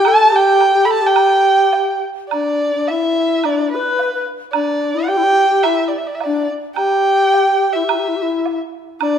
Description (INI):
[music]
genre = chinese traditional, Chinese chamber ensemble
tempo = 108 BPM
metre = 2/4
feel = rubato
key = G gong mode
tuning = A4 = 439 Hz
[part]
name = warm erhu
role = melody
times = 0.0-9.2 s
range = B4 to B5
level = -15 LUFS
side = right 2 dB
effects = none
[part]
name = breathy bright low xiao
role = second line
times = 0.0-9.2 s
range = D4 to B4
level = -18 LUFS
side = left 3 dB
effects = none
[part]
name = woodblock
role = percussion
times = 0.0-9.1 s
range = none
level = -25 LUFS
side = right 9 dB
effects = none
[sound]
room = moderate scoring stage reverb, RT60 1.8 s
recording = minimal, uncompressed stereo recording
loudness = -13 LUFS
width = side -8 dB against mid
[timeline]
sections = 0.0-2.3 A section; 2.3-9.2 B section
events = none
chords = none